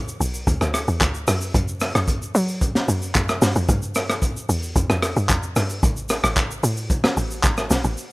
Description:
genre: amapiano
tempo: 112 BPM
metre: 4/4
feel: straight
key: E minor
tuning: A4 = 440 Hz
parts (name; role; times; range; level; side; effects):
- tight log drum bass; bass; 0.0-8.0 s; A1 to F#3; -22 LUFS; equal; none
- crunchy breakbeat drum kit; drums; 0.1-8.1 s; handclaps, hi-hat, kick drum, rim click, shaker, snare drum; -21 LUFS; equal; none
room: little or no reverb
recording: rough home demo mix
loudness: -19 LUFS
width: side -24 dB against mid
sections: 0.0-8.0 A section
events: drop 0.0-8.0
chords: none

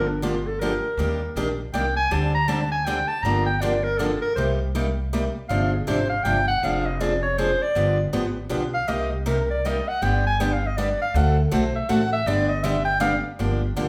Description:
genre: acoustic string swing (jazz manouche)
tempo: 159 BPM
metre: 3/4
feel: swing 62% on 8ths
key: G minor, C minor from 4.4 s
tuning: A4 = 444 Hz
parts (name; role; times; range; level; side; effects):
- bright clarinet; second line; 0.0-13.2 s; D4 to Bb5; -26 LUFS; equal; none
- picked steel-string acoustic guitar; accompaniment; 0.0-13.9 s; C3 to A4; -28 LUFS; equal; none
- upright bass; bass; 0.0-13.9 s; F1 to Eb2; -28 LUFS; equal; none
room: wet large studio reverb, RT60 0.9 s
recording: band playing live in one room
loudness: -23 LUFS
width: mono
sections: 0.0-4.4 A section; 4.4-13.4 A section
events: clarinet solo 0.0-13.4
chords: 0.0 Gm7; 1.0 Ebmaj7; 2.1 D7sus4; 3.2 Gm7; 4.4 Cm7; 5.5 G7sus4; 6.6 Dm7b5/F; 7.8 G7; 8.9 Cm7; 10.0 G; 11.1 D7; 12.3 G

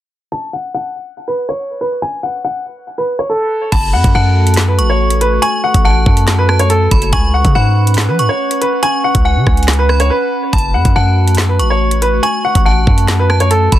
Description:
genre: hip hop, drill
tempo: 141 BPM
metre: 4/4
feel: half-time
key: F# minor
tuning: A4 = 439 Hz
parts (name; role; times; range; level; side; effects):
- bright upright piano; melody; 0.3-13.8 s; A4 to A5; -17 LUFS; left 1 dB; tape echo
- metallic FM bell; second line; 3.7-13.8 s; G#5 to C#6; -19 LUFS; right 3 dB; chorus, tape echo
- glass harmonica; sustained chords; 3.7-13.8 s; A3 to F#5; -21 LUFS; left 1 dB; none
- hard-hitting 808-style bass; bass; 3.7-13.8 s; F#1 to E#3; -13 LUFS; equal; none
- drill drum kit; drums; 3.7-13.8 s; crash cymbal, handclaps, hi-hat, kick drum, rim click, snare drum; -14 LUFS; equal; none
room: little or no reverb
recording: dense, heavily limited modern master, low-pass filter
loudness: -11 LUFS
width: side -13 dB against mid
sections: 0.3-3.7 A section; 3.7-13.8 B section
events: filter sweep 0.3-3.7; break 10.1-10.5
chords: 0.3 N.C.; 3.7 F#m; 7.1 C#7sus4; 10.5 F#m

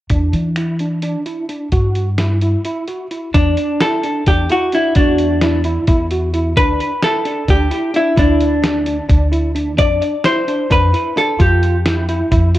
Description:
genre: progressive instrumental, band music in an uneven meter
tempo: 261 BPM (eighths)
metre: 7/8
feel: straight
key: unclear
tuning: A4 = 441 Hz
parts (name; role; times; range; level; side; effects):
- bell-like tine electric piano; arpeggios; 0.1-12.6 s; D4 to F#4; -21 LUFS; right 1 dB; ensemble chorus, cassette tape, tape echo
- upright bass; bass; 0.1-12.6 s; D2 to E3; -17 LUFS; equal; none
- lo-fi sampler-style drum kit; drums; 0.1-12.6 s; finger snaps, hi-hat, kick drum, snare drum; -18 LUFS; equal; cassette tape
- vintage hollow-body jazz guitar; melody; 3.3-12.6 s; D4 to D5; -16 LUFS; left 1 dB; tape echo
room: light reverb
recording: home recording on cassette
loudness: -13 LUFS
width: side -14 dB against mid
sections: 0.1-3.3 A section; 3.3-12.6 B section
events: none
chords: 0.1 Em7; 3.3 E7sus2; 6.6 N.C.; 9.8 Fsus2

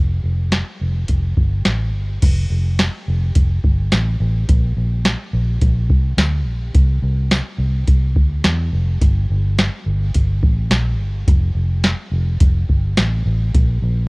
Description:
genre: dream pop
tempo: 106 BPM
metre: 4/4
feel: straight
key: F major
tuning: A4 = 440 Hz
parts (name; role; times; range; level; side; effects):
- vintage muted fingered electric bass; bass; 0.0-14.1 s; F1 to E2; -18 LUFS; equal; none
- soft vintage rhythm box; drums; 0.5-13.7 s; crash cymbal, hi-hat, kick drum, snare drum, tambourine; -16 LUFS; equal; none
room: little or no reverb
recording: worn, warbling old tape, cassette tape, warbly pitch drift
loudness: -15 LUFS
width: side -32 dB against mid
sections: 0.0-2.2 A section; 2.2-14.1 B section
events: none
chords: none

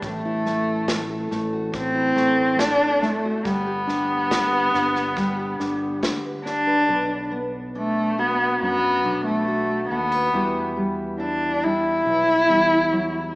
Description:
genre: acoustic folk duo or small band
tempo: 70 BPM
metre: 4/4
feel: straight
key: unclear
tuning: A4 = 440 Hz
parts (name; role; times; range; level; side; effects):
- warm cello; melody; 0.0-13.4 s; A3 to E4; -21 LUFS; equal; none
- fingerpicked steel-string acoustic guitar; accompaniment; 0.0-13.4 s; A2 to B4; -26 LUFS; equal; none
- fingered electric bass; bass; 0.0-13.3 s; G1 to F#2; -33 LUFS; equal; none
- natural country drum kit; drums; 0.0-6.6 s; kick drum, snare drum; -29 LUFS; equal; none
room: moderate concert hall reverb, RT60 2.2 s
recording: recorded in a church or concert hall, small speaker sound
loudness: -19 LUFS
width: side -21 dB against mid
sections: 0.0-6.9 A section; 6.9-13.4 B section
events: none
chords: 0.0 Am6; 3.5 G; 6.9 Bm; 10.3 Emadd9

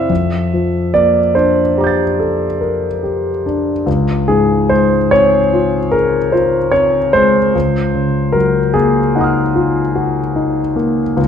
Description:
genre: classical, impressionist solo piano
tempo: 48 BPM (dotted quarters)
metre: 9/8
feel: rubato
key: unclear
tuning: A4 = 442 Hz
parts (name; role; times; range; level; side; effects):
- warm concert grand piano; solo; 0.0-11.3 s; Db2 to A6; -12 LUFS; left 1 dB; none
room: moderate recital hall reverb, RT60 1.5 s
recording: dark, warm production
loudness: -12 LUFS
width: side -8 dB against mid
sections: 0.0-11.3 A section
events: none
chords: 0.1 Gm11/F; 3.9 Dbmaj7; 7.5 Ebm11/Db

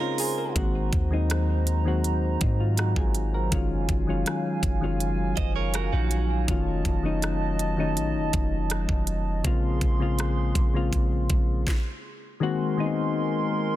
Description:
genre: contemporary R&B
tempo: 81 BPM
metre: 4/4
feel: straight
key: unclear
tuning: A4 = 440 Hz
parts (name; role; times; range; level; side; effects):
- soft electric-piano-like synth keys; accompaniment; 0.0-13.8 s; Db3 to Bb4; -28 LUFS; left 4 dB; chorus
- hollow soft pad; sustained chords; 0.0-13.8 s; Gb3 to C6; -33 LUFS; right 3 dB; chorus, sidechain pumping
- direct-recorded clean electric guitar; arpeggios; 0.0-0.5, 5.4-6.5 s; Eb4 to Eb5; -34 LUFS; right 11 dB; ping-pong delay
- trap drum kit; drums; 0.2-11.8 s; hi-hat, kick drum, rim click, snare drum; -28 LUFS; equal; none
- warm 808-style bass; bass; 0.6-11.7 s; F1 to Ab2; -26 LUFS; equal; none
room: digital ambience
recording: dense, heavily limited modern master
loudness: -23 LUFS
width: side -14 dB against mid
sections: 0.6-12.4 A section; 12.4-13.8 B section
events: break 0.0-0.6; stop 11.7-12.4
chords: 0.0 Bbm9; 0.6 Ab9; 3.5 Ebm11/Gb; 6.5 F7b9b13; 9.4 Bbm9; 12.4 Ab9

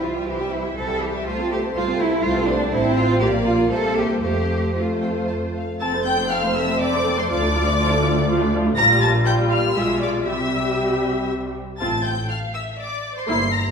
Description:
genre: quick classical-period movement for string orchestra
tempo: 121 BPM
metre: 3/4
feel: rubato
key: F major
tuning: A4 = 438 Hz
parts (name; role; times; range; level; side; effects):
- warm studio violin section; melody; 0.0-13.7 s; E5 to C7; -25 LUFS; left 2 dB; none
- rich studio violin section; second line; 0.0-13.7 s; A4 to C6; -27 LUFS; left 1 dB; none
- warm studio viola section; accompaniment; 0.0-13.5 s; E3 to C5; -23 LUFS; equal; none
- rich studio double bass section; bass; 0.0-13.7 s; F1 to F2; -27 LUFS; right 2 dB; none
- warm studio cello section; bass; 0.0-13.7 s; D2 to A4; -24 LUFS; right 1 dB; none
room: wet recital hall reverb, RT60 1.6 s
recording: recorded in a church or concert hall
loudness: -18 LUFS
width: side -6 dB against mid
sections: 0.0-5.8 A section; 5.8-13.7 B section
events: none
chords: 0.0 C; 1.3 F/C; 2.7 Am; 3.2 Bb; 3.7 C7; 4.2 F; 7.3 Dm; 8.8 Gm7/Bb; 9.8 Bdim7; 10.3 C; 11.8 F/A

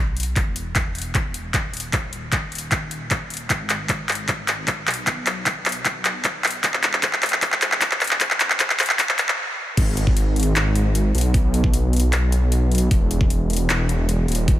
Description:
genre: future bass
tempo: 153 BPM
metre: 4/4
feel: half-time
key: unclear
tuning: A4 = 440 Hz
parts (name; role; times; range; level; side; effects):
- wide detuned saw bass; bass; 0.0-14.6 s; D#1 to B1; -22 LUFS; equal; chorus, tube saturation, sidechain pumping
- trap drum kit; drums; 0.2-14.6 s; crash cymbal, handclaps, hi-hat; -21 LUFS; equal; high-pass filter on snare, studio reverb, high-pass filter on hats, high-pass filter on cymbals
- electronic kick drum; drums; 0.4-14.6 s; none; -21 LUFS; equal; studio reverb
room: light reverb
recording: high-pass filter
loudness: -18 LUFS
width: side -13 dB against mid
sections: 0.0-9.8 A section; 9.8-14.6 B section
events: build-up 0.0-9.8; drum fill 0.0-9.4; filter sweep 0.0-9.8; stop 9.4-9.8; drop 9.8-14.6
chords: none

